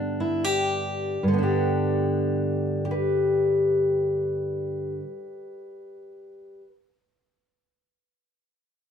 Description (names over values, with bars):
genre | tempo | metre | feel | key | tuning
folk, solo fingerstyle acoustic guitar | 56 BPM | 4/4 | straight | G major | A4 = 440 Hz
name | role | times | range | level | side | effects
fingerpicked steel-string acoustic guitar | solo | 0.0-6.7 s | G2 to B4 | -23 LUFS | left 1 dB | none
room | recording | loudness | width
moderate studio reverb, RT60 0.9 s | dark, warm production | -22 LUFS | side -7 dB against mid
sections
0.0-1.2 A section; 1.2-5.5 B section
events
slowing down 0.0-1.2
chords
0.0 G